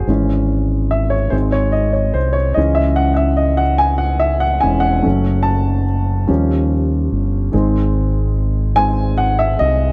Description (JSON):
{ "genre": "slow gospel", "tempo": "48 BPM (dotted quarters)", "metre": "6/8", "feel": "straight", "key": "C# harmonic minor", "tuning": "A4 = 440 Hz", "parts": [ { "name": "warm upright piano", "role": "accompaniment", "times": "0.0-9.9 s", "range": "D#3 to A5", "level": "-19 LUFS", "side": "equal", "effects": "none" }, { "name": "fingered electric bass with an envelope filter", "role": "bass", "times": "0.0-9.9 s", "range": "E1 to D#2", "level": "-19 LUFS", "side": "equal", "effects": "none" } ], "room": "light reverb, small room ambience", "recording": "none", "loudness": "-16 LUFS", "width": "mono", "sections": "0.0-9.9 A section", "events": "upright piano solo 0.0-9.9", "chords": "0.1 C#m/G#; 1.3 G#; 2.6 C#m; 5.0 F#m; 6.3 D#7; 7.5 G#", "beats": "| 0.09 1.33 | 2.57 3.81 | 5.05 6.29 | 7.53 8.77" }